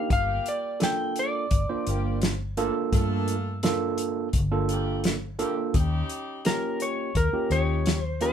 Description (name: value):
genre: straight-eighth soul blues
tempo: 85 BPM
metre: 4/4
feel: straight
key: G minor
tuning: A4 = 439 Hz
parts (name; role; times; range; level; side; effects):
- electric slide guitar; melody; 0.0-2.2, 6.5-8.3 s; Bb4 to G5; -28 LUFS; left 2 dB; none
- overdriven tine electric piano; accompaniment; 0.0-8.3 s; Bb3 to C5; -28 LUFS; right 4 dB; none
- warm horn section; sustained chords; 0.1-8.3 s; F3 to A4; -35 LUFS; equal; none
- vintage muted fingered electric bass; bass; 0.1-8.3 s; G1 to G2; -28 LUFS; left 1 dB; none
- warm soul drum kit; drums; 0.1-8.3 s; hi-hat, kick drum, snare drum; -26 LUFS; left 1 dB; none
room: moderate studio ambience, RT60 0.5 s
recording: band playing live in one room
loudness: -24 LUFS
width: side -8 dB against mid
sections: 0.0-8.3 A section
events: none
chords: 0.1 Gm7; 5.7 Eb7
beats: | 0.10 0.81 1.51 2.22 | 2.92 3.63 4.33 5.04 | 5.74 6.45 7.15 7.86